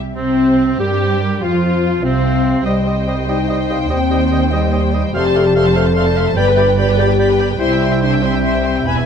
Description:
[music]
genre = classical, dramatic, fast romantic movement for symphony orchestra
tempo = 97 BPM (dotted quarters)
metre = 6/8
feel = straight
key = unclear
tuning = A4 = 440 Hz
[part]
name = rich symphonic viola section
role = accompaniment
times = 0.1-9.1 s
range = C4 to E5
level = -26 LUFS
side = right 1 dB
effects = none
[part]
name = dark French horn section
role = sustained chords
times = 0.1-9.1 s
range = G3 to B4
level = -17 LUFS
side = left 5 dB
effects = none
[part]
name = warm symphonic violin section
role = melody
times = 0.2-9.1 s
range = C4 to C6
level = -26 LUFS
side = left 3 dB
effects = none
[part]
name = clear oboe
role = second line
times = 0.2-9.1 s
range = C4 to G#5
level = -26 LUFS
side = right 2 dB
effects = none
[part]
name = dark clarinet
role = second line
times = 0.2-9.1 s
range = C4 to E5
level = -26 LUFS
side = equal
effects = none
[part]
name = rich symphonic violin section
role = second line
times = 0.2-9.1 s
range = C4 to A5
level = -29 LUFS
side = left 2 dB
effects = none
[part]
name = warm bassoon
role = accompaniment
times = 0.2-9.1 s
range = C3 to A3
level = -27 LUFS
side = right 2 dB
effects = none
[part]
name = warm symphonic cello section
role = bass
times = 0.2-9.1 s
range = C2 to G3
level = -20 LUFS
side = right 3 dB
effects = none
[part]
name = warm symphonic double bass section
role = bass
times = 0.2-9.1 s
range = E1 to G2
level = -20 LUFS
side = right 4 dB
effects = none
[part]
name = mellow silver concert flute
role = second line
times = 0.8-9.1 s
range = Bb4 to G#5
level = -26 LUFS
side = left 2 dB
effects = none
[part]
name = timpani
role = percussion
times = 8.9-9.1 s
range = E2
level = -29 LUFS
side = left 2 dB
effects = none
[sound]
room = moderate scoring stage reverb, RT60 1.6 s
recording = none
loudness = -13 LUFS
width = side -7 dB against mid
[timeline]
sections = 0.2-9.1 A section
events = timpani fill 8.9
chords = 0.2 Gmadd11/C; 1.4 F5; 2.7 Cm; 3.9 Cm/Eb; 5.1 F; 6.4 G; 7.6 C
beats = | 0.16 0.81 | 1.43 2.04 | 2.66 3.29 | 3.91 4.52 | 5.15 5.76 | 6.37 6.99 | 7.60 8.23 | 8.87

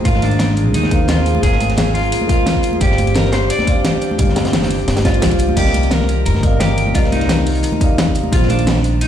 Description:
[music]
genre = liquid drum and bass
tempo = 174 BPM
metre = 4/4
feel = straight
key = C minor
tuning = A4 = 439 Hz
[part]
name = felt-muted upright piano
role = accompaniment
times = 0.0-9.1 s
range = C3 to F5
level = -22 LUFS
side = left 1 dB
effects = tape echo
[part]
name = airy breathy pad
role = sustained chords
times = 0.0-9.1 s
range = Eb3 to Bb4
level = -25 LUFS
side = left 2 dB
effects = chorus, sidechain pumping
[part]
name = upright bass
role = bass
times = 0.0-9.0 s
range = G1 to Eb2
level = -18 LUFS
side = equal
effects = none
[part]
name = crunchy breakbeat drum kit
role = drums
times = 0.0-9.1 s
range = hi-hat, snare drum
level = -25 LUFS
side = right 1 dB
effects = high-pass filter on hats, small room ambience, high-pass filter on snare, high-pass filter on room
[part]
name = electric guitar at the edge of break-up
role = melody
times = 0.1-9.1 s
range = D4 to D5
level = -21 LUFS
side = equal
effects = digital delay
[part]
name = electronic kick drum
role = drums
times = 0.1-8.4 s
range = none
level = -17 LUFS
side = equal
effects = small room ambience
[part]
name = pop drum kit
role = drums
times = 0.1-9.1 s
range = crash cymbal, hi-hat, snare drum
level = -21 LUFS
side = left 1 dB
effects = small room ambience
[part]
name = congas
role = percussion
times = 0.2-8.8 s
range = none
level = -25 LUFS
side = right 2 dB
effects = none
[sound]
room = small room ambience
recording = played on a big sound system in a bare room, large studio reverb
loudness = -13 LUFS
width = side -10 dB against mid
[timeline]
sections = 0.0-9.1 A section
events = none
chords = 0.1 Ab69; 2.8 G7sus4; 5.6 Cm11; 8.3 Bb7sus4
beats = | 0.05 0.40 0.74 1.09 | 1.43 1.78 2.12 2.47 | 2.81 3.16 3.50 3.85 | 4.19 4.54 4.88 5.22 | 5.57 5.92 6.26 6.60 | 6.95 7.29 7.64 7.98 | 8.33 8.67 9.02

